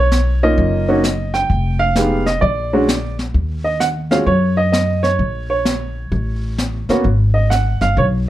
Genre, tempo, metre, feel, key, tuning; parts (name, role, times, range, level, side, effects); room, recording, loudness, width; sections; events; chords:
jazz piano trio; 130 BPM; 4/4; swing 66% on 8ths; Eb minor; A4 = 439 Hz
warm upright piano; melody; 0.0-8.0 s; Ab3 to G5; -17 LUFS; right 2 dB
upright bass; bass; 0.0-8.3 s; F1 to Gb2; -18 LUFS; left 1 dB
jazz brush drum kit; drums; 0.1-8.3 s; brushed snare drum, hi-hat, kick drum, snare drum; -23 LUFS; left 2 dB
light reverb; dark, warm production; -14 LUFS; side -14 dB against mid
0.0-3.3 A section; 3.3-8.3 B section
0.0 Bmaj9#11; 1.5 Fm7b5; 2.4 Bb; 3.3 Ebm7; 5.2 Bbm; 6.1 A; 7.0 Abm7